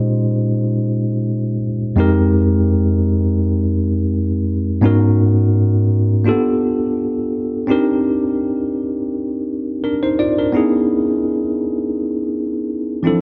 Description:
R&B; 84 BPM; 4/4; swing 54% on 16ths; A4 = 440 Hz
bell-like tine electric piano; solo; 0.0-13.2 s; F2 to D5; -17 LUFS; equal
light reverb; worn, warbling old tape, cassette tape, warbly pitch drift; -18 LUFS; mono
0.0-7.7 A section; 7.7-13.2 B section
0.0 Bbm11; 2.0 Fm11; 4.8 Abm11; 6.3 G7; 7.7 Cm7; 10.6 Dbm7

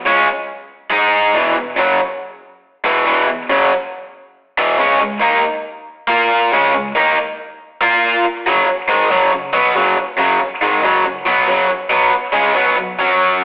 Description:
rock; 139 BPM; 4/4; straight; F# mixolydian; A4 = 439 Hz
overdriven electric guitar; solo; 0.1-13.4 s; E2 to A#4; -12 LUFS; equal
wet stone room reverb, RT60 1.4 s; rough rehearsal-room recording, warm saturation, telephone sound; -12 LUFS; side -19 dB against mid
0.0-8.2 A section; 8.2-13.4 B section
0.0 N.C.; 0.9 G#5; 1.4 E5; 4.8 C#5; 6.1 A#5; 6.5 C#5; 7.8 A#5; 8.2 F#5; 11.7 B5; 13.0 F#5

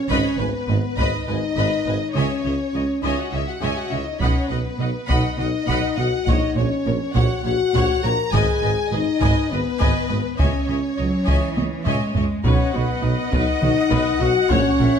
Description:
cinematic, epic orchestral film score; 204 BPM (eighths); 7/8; straight; B major; A4 = 440 Hz
warm symphonic violin section; melody; 0.0-15.0 s; B4 to A#5; -29 LUFS; left 4 dB
mellow French horn section; sustained chords; 0.0-15.0 s; B3 to A#4; -24 LUFS; left 4 dB
warm symphonic violin section; second line; 0.1-15.0 s; G#4 to B5; -30 LUFS; equal
clear studio viola section; accompaniment; 0.1-14.9 s; D#4 to F#5; -29 LUFS; equal
clear tuba; bass; 0.1-14.9 s; G#1 to C#2; -30 LUFS; right 5 dB
rich symphonic cello section; bass; 0.1-14.9 s; G#2 to G#3; -27 LUFS; right 3 dB
warm symphonic double bass section; bass; 0.1-14.9 s; G#1 to C#2; -26 LUFS; right 3 dB
taiko ensemble; drums; 0.1-15.0 s; -24 LUFS; equal
bright silver concert flute; second line; 12.4-15.0 s; C#5 to F#5; -30 LUFS; left 1 dB
mellow trumpet section; stabs; 12.4-15.0 s; B4 to F#5; -28 LUFS; equal
light reverb; -18 LUFS; side -7 dB against mid
0.0-12.5 A section; 12.5-15.0 A section
drum fill 11.6-12.5
0.1 G#m; 2.2 C#madd9; 4.2 B; 6.3 F#/A#; 8.3 G#m; 10.4 C#madd9; 12.5 B

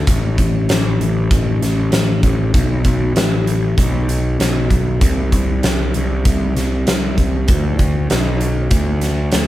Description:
quiet-loud alternative rock; 97 BPM; 4/4; straight; A4 = 440 Hz
fuzz picked electric bass; bass; 0.0-9.5 s; A1 to D2; -17 LUFS; equal; overdrive
huge arena drum kit; drums; 0.1-9.5 s; hi-hat, kick drum, snare drum; -17 LUFS; equal
light reverb; band playing live in one room; -14 LUFS; side -14 dB against mid
0.0-9.5 A section

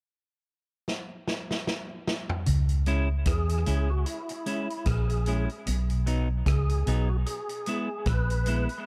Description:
dub reggae; 75 BPM; 4/4; swing 58% on 16ths; C# dorian; A4 = 440 Hz
vintage drum kit; drums; 0.9-8.8 s; hi-hat, kick drum, rim click, snare drum, toms; -34 LUFS; equal
mellow electric guitar; riff; 2.5-8.3 s; A#2 to E3; -35 LUFS; equal
vintage muted fingered electric bass; bass; 2.5-8.7 s; A#1 to E2; -28 LUFS; equal
clean electric guitar; accompaniment; 2.9-8.7 s; F#3 to E4; -36 LUFS; equal; dub echo
tonewheel organ; melody; 3.3-8.7 s; E4 to B4; -37 LUFS; equal; overdrive, chorus vibrato, slow rotary speaker, dub echo
small room reverb; -28 LUFS; mono
0.0-2.5 A section; 2.5-8.9 B section
drum fill 0.9-2.5
0.0 N.C.; 2.5 C#m; 5.7 B; 7.3 E

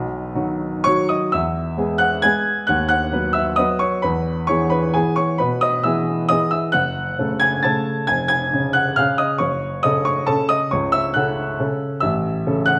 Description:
classical, piano waltz; 135 BPM; 3/4; uneven beats, rubato; E major; A4 = 439 Hz
warm upright piano; solo; 0.0-12.8 s; E#1 to A6; -20 LUFS; equal
wet large studio reverb, RT60 1.3 s; -20 LUFS; mono
0.0-1.3 A section; 1.3-12.8 B section
0.0 B; 1.3 E; 2.7 B/D#; 4.0 E; 6.7 F#m; 8.1 C#/E#; 9.4 F#m; 12.0 A

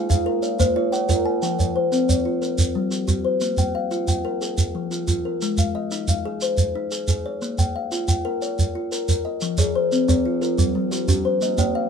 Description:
southern african traditional, mbira-style interlocking cycle; 120 BPM (dotted quarters); 12/8; straight; F equiheptatonic; A4 = 435 Hz
kalimba; arpeggios; 0.0-11.9 s; F3 to Ab5+43c; -22 LUFS; left 3 dB
kalimba; arpeggios; 0.0-1.8, 9.6-11.9 s; F3 to G5-29c; -26 LUFS; right 5 dB
shekere; percussion; 0.1-11.7 s; -22 LUFS; right 2 dB
light reverb; minimal, uncompressed stereo recording; -20 LUFS; side -7 dB against mid
0.0-1.4 A section; 1.4-11.9 B section
0.0 Bb; 1.4 Fm; 2.4 Gm; 3.4 Bb5; 4.4 Fm; 5.4 Ab; 7.4 Bb; 9.4 Fm; 10.4 Gm

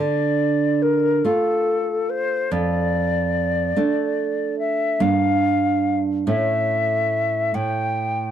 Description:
romantic duo for flute and classical guitar; 47 BPM (dotted quarters); 6/8; rubato; D minor; A4 = 440 Hz
mellow hollow silver concert flute; melody; 0.0-8.3 s; A4 to G5; -22 LUFS; left 3 dB
nylon-string guitar; accompaniment; 0.0-8.3 s; F2 to F4; -21 LUFS; right 4 dB
small room ambience; dry, close 1970s-style studio recording; -18 LUFS; side -9 dB against mid
0.0-8.3 A section
0.0 Dm; 2.5 Dm/F; 5.0 Gm; 6.3 A

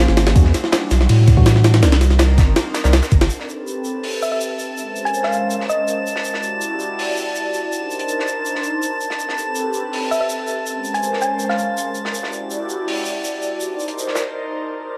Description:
drum and bass, jungle; 163 BPM; 4/4; straight; A4 = 440 Hz
airy breathy pad; sustained chords; 0.3-15.0 s; G3 to D5; -27 LUFS; equal; chorus, phaser
bright tine electric piano; stabs; 0.0-2.9 s; E3 to D5; -27 LUFS; equal; dub echo
saturated sub bass; bass; 0.0-3.3 s; G1 to A2; -16 LUFS; equal
jungle sampler-style drum kit; drums; 0.1-3.3 s; kick drum, ride cymbal, snare drum; -18 LUFS; equal; small room ambience
crunchy breakbeat drum kit; drums; 0.2-14.2 s; hi-hat, shaker, snare drum; -30 LUFS; equal; high-pass filter on hats, small room ambience, high-pass filter on snare, high-pass filter on perc, high-pass filter on room
drifting glass-harmonics texture; texture; 3.8-14.3 s; A5; -29 LUFS; equal; chorus, built-in reverb
thumb-piano-like synth pluck; melody; 4.2-6.0, 10.1-11.8 s; D#5 to Ab5; -26 LUFS; equal; chorus, dub echo
moderate lush hall reverb, RT60 2.1 s; -19 LUFS; mono
0.0-3.3 A section; 3.3-15.0 B section
filter sweep on analog synth pad 3.3-15.0; break 14.3-15.0
0.4 Em9; 1.8 Cm9; 3.3 Am9; 4.8 Bbm9; 6.2 Em9; 7.7 Cm9; 9.2 Am9; 10.7 Bbm9; 12.1 Em9; 13.6 Cm9

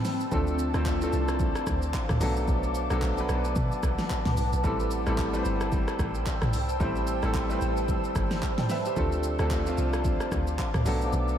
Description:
amapiano; 111 BPM; 4/4; swing 58% on 16ths; A minor; A4 = 441 Hz
clear grand piano; accompaniment; 0.0-11.4 s; E3 to G5; -30 LUFS; equal
ethereal airy pad; sustained chords; 0.0-11.4 s; C4 to E6; -33 LUFS; equal; ensemble chorus, built-in reverb, sidechain pumping
deep house drum kit; drums; 0.0-11.4 s; handclaps, hi-hat, kick drum, rim click, shaker, snare drum, toms; -30 LUFS; equal
deep log drum bass; bass; 0.3-11.4 s; G1 to B2; -29 LUFS; equal
moderate lush hall reverb, RT60 2.5 s; dreamy mix soaked in reverb; -25 LUFS; side -10 dB against mid
0.0-11.4 A section
kick muted 11.1
0.3 Dm7; 2.2 Bm7; 4.6 Am7; 9.0 Dm7; 10.9 Bm7

